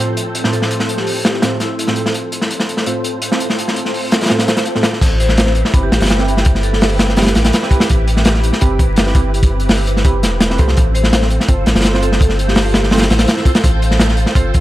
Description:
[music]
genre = drum and bass, jungle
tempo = 167 BPM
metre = 4/4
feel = straight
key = A minor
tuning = A4 = 440 Hz
[part]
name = soft string machine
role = sustained chords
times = 0.0-14.6 s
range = A2 to C5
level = -22 LUFS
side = equal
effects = phaser, ensemble chorus
[part]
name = deep mellow chord stab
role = stabs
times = 0.0-14.5 s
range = A2 to C5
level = -23 LUFS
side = right 2 dB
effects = analog chorus, dub echo
[part]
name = crunchy breakbeat drum kit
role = drums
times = 0.2-14.6 s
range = crash cymbal, hi-hat, kick drum, snare drum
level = -14 LUFS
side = equal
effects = high-pass filter on kick, high-pass filter on hats, high-pass filter on cymbals, high-pass filter on snare, high-pass filter on room
[part]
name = vibraphone with medium hard mallets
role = melody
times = 0.5-2.0, 5.2-6.9, 10.9-13.5 s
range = E4 to C5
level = -25 LUFS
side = left 1 dB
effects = dub echo
[part]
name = swell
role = sound effects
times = 4.5-5.0 s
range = none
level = -30 LUFS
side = left 4 dB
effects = none
[part]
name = soft dub sub bass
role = bass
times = 5.0-14.6 s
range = E1 to C2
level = -16 LUFS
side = equal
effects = none
[sound]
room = light reverb, small room ambience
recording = vinyl crackle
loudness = -12 LUFS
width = side -15 dB against mid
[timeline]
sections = 0.0-5.0 A section; 5.0-14.6 B section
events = drop 5.0-14.6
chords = 0.0 F/A; 5.0 Am7

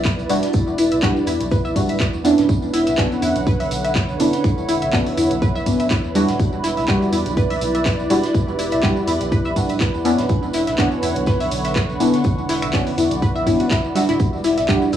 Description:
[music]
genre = deep house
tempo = 123 BPM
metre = 4/4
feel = swing 55% on 16ths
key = E dorian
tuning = A4 = 440 Hz
[part]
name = warm analog pad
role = sustained chords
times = 0.0-15.0 s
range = D3 to F#5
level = -28 LUFS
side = right 2 dB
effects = chorus, sidechain pumping, cassette tape
[part]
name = deep mellow chord stab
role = stabs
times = 0.0-15.0 s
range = G3 to F#4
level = -21 LUFS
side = right 1 dB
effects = chorus, sidechain pumping, cassette tape, analog delay
[part]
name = round analog bass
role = bass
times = 0.0-15.0 s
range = D1 to E2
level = -27 LUFS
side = equal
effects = tube saturation
[part]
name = tambourine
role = percussion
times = 0.0-15.0 s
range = none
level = -36 LUFS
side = right 5 dB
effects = none
[part]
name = warbly tape-like pad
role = texture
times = 0.0-15.0 s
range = D3 to C#6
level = -28 LUFS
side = right 1 dB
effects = chorus, built-in reverb, sidechain pumping, cassette tape
[part]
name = analog pluck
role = arpeggios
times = 0.1-15.0 s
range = E4 to E5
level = -23 LUFS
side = left 2 dB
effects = chorus, phaser, sidechain pumping, cassette tape, analog delay
[part]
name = electronic kick drum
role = drums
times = 0.1-14.8 s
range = none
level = -20 LUFS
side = equal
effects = none
[part]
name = house drum kit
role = drums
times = 0.1-15.0 s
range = finger snaps, handclaps, hi-hat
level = -29 LUFS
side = equal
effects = none
[part]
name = vintage brush drum kit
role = drums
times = 0.1-15.0 s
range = hi-hat, snare drum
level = -37 LUFS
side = left 1 dB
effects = none
[sound]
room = light reverb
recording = home recording on cassette, small room ambience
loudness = -16 LUFS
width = side -10 dB against mid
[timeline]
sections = 0.0-15.0 A section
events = none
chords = 0.0 Em7

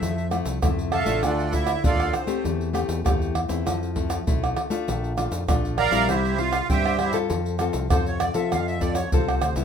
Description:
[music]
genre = samba and choro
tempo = 99 BPM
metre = 4/4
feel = straight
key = F major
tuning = A4 = 440 Hz
[part]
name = accordion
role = second line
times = 0.0-9.5 s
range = C4 to Bb5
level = -26 LUFS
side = right 6 dB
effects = light tremolo tuning
[part]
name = nylon-string guitar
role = accompaniment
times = 0.0-9.6 s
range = G2 to A4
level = -27 LUFS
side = left 6 dB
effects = none
[part]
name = fingered electric bass with an envelope filter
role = bass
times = 0.0-9.6 s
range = A1 to F3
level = -28 LUFS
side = equal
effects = none
[part]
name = egg shaker, surdo, pandeiro and tamborim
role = percussion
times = 0.0-9.6 s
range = none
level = -25 LUFS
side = right 1 dB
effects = none
[sound]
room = moderate studio reverb, RT60 0.8 s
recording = minimal, uncompressed stereo recording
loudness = -21 LUFS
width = side -7 dB against mid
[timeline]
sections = 0.0-9.6 A section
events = accordion solo 0.0-9.6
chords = 0.0 Fmaj7; 1.2 Dm; 2.4 Am7/E; 3.7 Fmaj7; 4.9 Bbmaj7; 6.1 C; 7.3 F

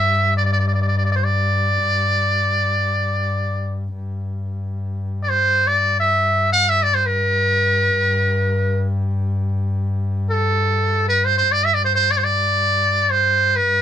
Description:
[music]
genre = Arabic maqam ensemble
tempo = free time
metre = none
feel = none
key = G maqam rast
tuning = A4 = 440 Hz
[part]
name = trumpet with metal mute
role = melody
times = 0.0-13.8 s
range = A4 to F5+49c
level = -17 LUFS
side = right 1 dB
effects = none
[part]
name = rich double bass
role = drone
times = 0.0-13.8 s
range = G2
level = -21 LUFS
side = left 1 dB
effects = none
[sound]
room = light reverb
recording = close, detailed microphones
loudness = -16 LUFS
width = side -10 dB against mid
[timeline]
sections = 0.0-13.8 A section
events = none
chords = none

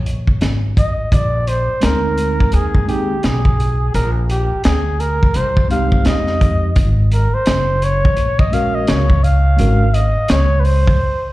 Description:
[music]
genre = hip hop, jazz-hop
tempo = 85 BPM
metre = 4/4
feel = swing 59% on 16ths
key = unclear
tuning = A4 = 439 Hz
[part]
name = breathy flugelhorn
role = melody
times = 0.0-11.3 s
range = G4 to F5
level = -20 LUFS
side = equal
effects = analog delay
[part]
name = upright bass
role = bass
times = 0.0-11.0 s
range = Gb1 to F2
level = -16 LUFS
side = equal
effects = none
[part]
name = crunchy breakbeat drum kit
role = drums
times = 0.1-11.0 s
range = hi-hat, kick drum, snare drum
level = -17 LUFS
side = equal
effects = none
[part]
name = mellow tine electric piano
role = accompaniment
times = 1.8-9.9 s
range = Ab3 to Bb4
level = -22 LUFS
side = equal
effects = medium stereo tremolo
[sound]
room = studio reverb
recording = played on a big sound system in a bare room, large studio reverb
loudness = -13 LUFS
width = side -17 dB against mid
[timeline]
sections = 0.0-11.3 A section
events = flugelhorn solo 0.0-11.3; break 11.0-11.3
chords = 0.0 Absus2; 1.1 Bb9sus4; 6.8 Ab9sus4

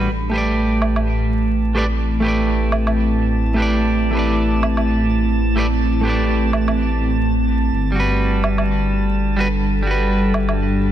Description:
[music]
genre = future garage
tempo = 126 BPM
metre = 4/4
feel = swing 61% on 16ths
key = A dorian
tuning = A4 = 441 Hz
[part]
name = clean electric guitar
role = accompaniment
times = 0.0-10.9 s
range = G3 to D5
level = -21 LUFS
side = right 2 dB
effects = tape echo
[part]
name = warbly tape-like pad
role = sustained chords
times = 0.0-10.9 s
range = G3 to B5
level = -23 LUFS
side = right 1 dB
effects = chorus, built-in reverb
[part]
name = dark detuned saw bass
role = bass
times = 0.0-10.9 s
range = G1 to A1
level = -20 LUFS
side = equal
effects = none
[part]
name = drifting glass-harmonics texture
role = texture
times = 0.7-10.9 s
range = A5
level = -31 LUFS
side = right 2 dB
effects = chorus, built-in reverb
[part]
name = woodblock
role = drums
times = 0.8-10.6 s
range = none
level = -24 LUFS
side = right 3 dB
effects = soft clipping on snare
[sound]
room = light reverb, digital ambience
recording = dense, heavily limited modern master, vinyl crackle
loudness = -16 LUFS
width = side -11 dB against mid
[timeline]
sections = 0.1-10.9 A section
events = none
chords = 0.1 Am11; 7.7 Gmaj7

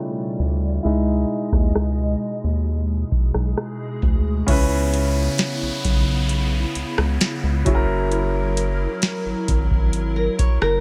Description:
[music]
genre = contemporary R&B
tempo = 66 BPM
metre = 4/4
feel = straight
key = C# dorian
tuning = A4 = 440 Hz
[part]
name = warm concert grand piano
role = accompaniment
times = 0.0-10.8 s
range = C#3 to B4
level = -28 LUFS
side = equal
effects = none
[part]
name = hollow soft pad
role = sustained chords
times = 0.0-10.8 s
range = B2 to D#5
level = -31 LUFS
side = equal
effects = ensemble chorus
[part]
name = rubbery square bass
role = bass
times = 0.4-10.8 s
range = F#1 to D#2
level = -24 LUFS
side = equal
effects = none
[part]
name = booming analog drum machine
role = drums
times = 0.4-10.8 s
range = crash cymbal, hi-hat, kick drum, rim click, snare drum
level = -22 LUFS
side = equal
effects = vintage 12-bit sampler grit
[part]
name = downlifter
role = sound effects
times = 4.5-10.8 s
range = none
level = -34 LUFS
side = equal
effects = none
[part]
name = nylon-string guitar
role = arpeggios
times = 10.2-10.8 s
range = A#4 to C#5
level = -24 LUFS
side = equal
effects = none
[sound]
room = little or no reverb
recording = low-pass filter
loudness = -21 LUFS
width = mono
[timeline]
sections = 0.0-4.5 A section; 4.5-10.8 B section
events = filter sweep 0.0-4.5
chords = 0.0 B7alt; 0.8 Emaj7/C#; 4.5 C#m7; 7.7 F#7

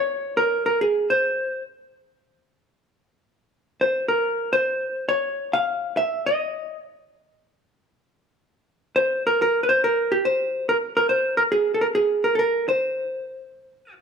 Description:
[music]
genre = jazz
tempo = 140 BPM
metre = 3/4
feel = swing 67% on 8ths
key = unclear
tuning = A4 = 440 Hz
[part]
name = vintage hollow-body jazz guitar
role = solo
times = 0.0-1.6, 3.8-6.8, 9.0-13.9 s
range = G4 to F5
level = -20 LUFS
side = equal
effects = none
[sound]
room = moderate large studio reverb, RT60 1.4 s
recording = none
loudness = -20 LUFS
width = side -6 dB against mid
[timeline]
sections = 0.0-14.0 A section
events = none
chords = none

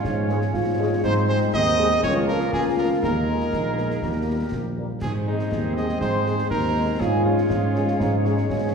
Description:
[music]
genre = military-style march for wind band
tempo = 121 BPM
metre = 2/4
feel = straight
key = Ab major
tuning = A4 = 441 Hz
[part]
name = clear cornet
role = melody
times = 0.0-8.7 s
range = Eb4 to Eb5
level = -28 LUFS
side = right 1 dB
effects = none
[part]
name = clear woodwind section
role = second line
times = 0.0-8.7 s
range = Db4 to Db5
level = -33 LUFS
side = equal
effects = none
[part]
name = mellow hollow large flute ensemble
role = second line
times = 0.0-8.7 s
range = Eb5 to Eb6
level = -31 LUFS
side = left 2 dB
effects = none
[part]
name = warm euphonium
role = second line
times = 0.0-8.7 s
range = C4 to F4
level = -27 LUFS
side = equal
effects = none
[part]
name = mellow tuba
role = bass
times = 0.0-8.7 s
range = Bb1 to Ab2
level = -24 LUFS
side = equal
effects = none
[part]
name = concert snare drum, concert bass drum and clash cymbals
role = drums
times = 0.0-8.7 s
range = none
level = -32 LUFS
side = left 1 dB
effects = none
[part]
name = clear French horn section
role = accompaniment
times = 0.3-8.3 s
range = F3 to Bb4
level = -32 LUFS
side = left 2 dB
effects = none
[part]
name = warm trombone section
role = sustained chords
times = 0.3-8.7 s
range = F3 to Db4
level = -31 LUFS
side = right 2 dB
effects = none
[sound]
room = wet recital hall reverb, RT60 1.6 s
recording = heard from further back in the room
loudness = -20 LUFS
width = side -5 dB against mid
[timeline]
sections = 0.0-8.7 A section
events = none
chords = 0.0 Db/Ab; 1.0 Ab; 2.0 Bbm/Db; 3.0 Ebsus4; 4.0 Eb; 5.0 Ab; 7.0 Db/Ab

